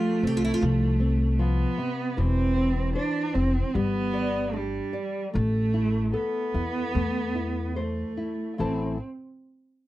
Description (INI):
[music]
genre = fado-style ballad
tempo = 75 BPM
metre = 4/4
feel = rubato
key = A minor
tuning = A4 = 442 Hz
[part]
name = picked twelve-string acoustic guitar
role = melody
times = 0.0-0.6 s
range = E4 to G4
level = -30 LUFS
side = left 1 dB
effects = none
[part]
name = warm cello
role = second line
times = 0.0-9.0 s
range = G3 to D4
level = -28 LUFS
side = right 3 dB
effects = none
[part]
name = nylon-string guitar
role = accompaniment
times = 0.0-9.0 s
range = A2 to A5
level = -30 LUFS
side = left 3 dB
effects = none
[part]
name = upright bass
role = bass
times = 0.2-9.0 s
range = E1 to E2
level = -27 LUFS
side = equal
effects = none
[sound]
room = light reverb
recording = dry, close 1970s-style studio recording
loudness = -24 LUFS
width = side -16 dB against mid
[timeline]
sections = 0.0-8.6 A section; 8.6-9.9 B section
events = none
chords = 0.0 F; 2.2 Dm9/E; 3.7 G; 5.3 Am